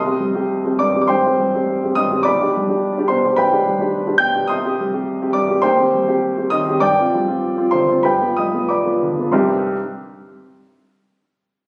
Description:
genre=classical, romantic character piece for solo piano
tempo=89-111 BPM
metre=4/4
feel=rubato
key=C minor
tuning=A4 = 440 Hz
part: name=warm upright piano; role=solo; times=0.0-9.8 s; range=B1 to G6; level=-18 LUFS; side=equal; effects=none
room=moderate recital hall reverb, RT60 1.6 s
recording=recorded on a phone in the room, studio reverb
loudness=-18 LUFS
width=mono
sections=0.0-9.3 A section; 9.3-11.7 B section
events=none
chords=0.0 Cm; 2.3 G/B; 4.5 Cm; 5.6 Cm/Eb; 6.8 G7sus4; 8.0 G7; 9.3 Cm

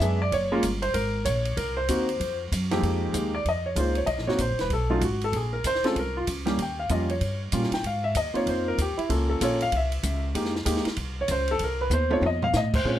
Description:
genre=jazz piano trio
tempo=191 BPM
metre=4/4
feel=swing 63% on 8ths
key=F minor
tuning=A4 = 440 Hz
part: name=warm concert grand piano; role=melody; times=0.0-13.0 s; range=F2 to G5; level=-26 LUFS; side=equal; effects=none
part: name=upright bass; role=bass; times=0.0-13.0 s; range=Eb1 to Bb2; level=-28 LUFS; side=equal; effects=none
part: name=compact cocktail drum kit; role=drums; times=0.0-12.9 s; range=crash cymbal, hi-hat, kick drum, ride cymbal, snare drum, toms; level=-32 LUFS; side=right 1 dB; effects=none
room=light reverb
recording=none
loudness=-23 LUFS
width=side -12 dB against mid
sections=0.0-2.8 A section; 2.8-12.9 B section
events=grand piano solo 2.8-13.0; drum fill 11.9-12.5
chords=0.3 Gbadd9; 1.6 Cm7b5; 2.2 F5; 2.8 Fm11; 4.1 Cm7b5; 4.7 B7(no3); 5.3 Bbm9; 6.6 Eb9; 7.8 Ab69; 9.1 Bbmmaj7; 9.7 C; 10.3 Fm11; 11.6 Cm; 12.2 F

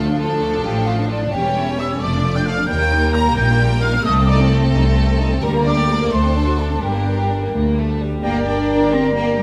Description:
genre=quick classical-period movement for symphony orchestra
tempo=88 BPM (dotted quarters)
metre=6/8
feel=straight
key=G minor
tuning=A4 = 444 Hz
part: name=rich chamber violin section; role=melody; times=0.0-9.4 s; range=D4 to Bb5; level=-30 LUFS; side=equal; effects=none
part: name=mellow flute section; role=second line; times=0.0-9.4 s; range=D5 to G6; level=-25 LUFS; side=equal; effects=none
part: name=rich studio violin section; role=second line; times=0.0-9.4 s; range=G3 to D5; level=-26 LUFS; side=equal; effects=none
part: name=rich chamber viola section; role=accompaniment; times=0.0-9.4 s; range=F3 to Bb4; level=-28 LUFS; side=equal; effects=none
part: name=rich chamber cello section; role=bass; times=0.0-9.4 s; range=C2 to D4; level=-24 LUFS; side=equal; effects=none
part: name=rich chamber double bass section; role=bass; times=0.0-9.4 s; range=E1 to Eb2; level=-22 LUFS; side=equal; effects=none
part: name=timpani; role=percussion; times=5.4-6.1 s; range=none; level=barely audible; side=none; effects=none
part: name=bright clarinet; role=second line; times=8.2-9.4 s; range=Bb4 to D5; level=-31 LUFS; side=equal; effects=none
part: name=clear oboe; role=second line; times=8.2-9.4 s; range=G5 to Bb5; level=-29 LUFS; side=equal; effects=none
part: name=clear French horn section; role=sustained chords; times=8.2-9.4 s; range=Bb4 to D5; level=-23 LUFS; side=equal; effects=none
room=moderate scoring stage reverb, RT60 1.7 s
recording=none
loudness=-17 LUFS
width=mono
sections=0.0-8.2 A section; 8.2-9.4 A section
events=none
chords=0.0 Dm; 1.3 C#dim/E; 2.0 Dm/F; 2.7 Eb; 4.1 Adim/C; 5.4 Gm/D; 6.1 D7(no3); 6.8 Gm

